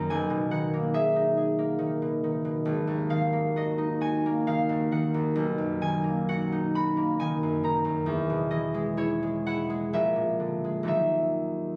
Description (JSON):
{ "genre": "classical, solo harp piece", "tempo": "61-73 BPM", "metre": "3/4", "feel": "rubato", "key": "unclear", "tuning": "A4 = 440 Hz", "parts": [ { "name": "concert harp", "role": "solo", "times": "0.0-11.8 s", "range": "Ab1 to B5", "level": "-27 LUFS", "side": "equal", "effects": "none" } ], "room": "moderate stone room reverb, RT60 0.9 s", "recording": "recorded on a phone in the room, studio reverb, nothing above 11.0 kHz", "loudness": "-27 LUFS", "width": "mono", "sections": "0.0-11.8 A section", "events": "none", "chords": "0.1 Emaj7#11/B; 2.7 Ab7sus2; 5.3 Bmaj7; 8.0 Emaj7; 9.9 Bb7#11; 10.9 Ebmadd9" }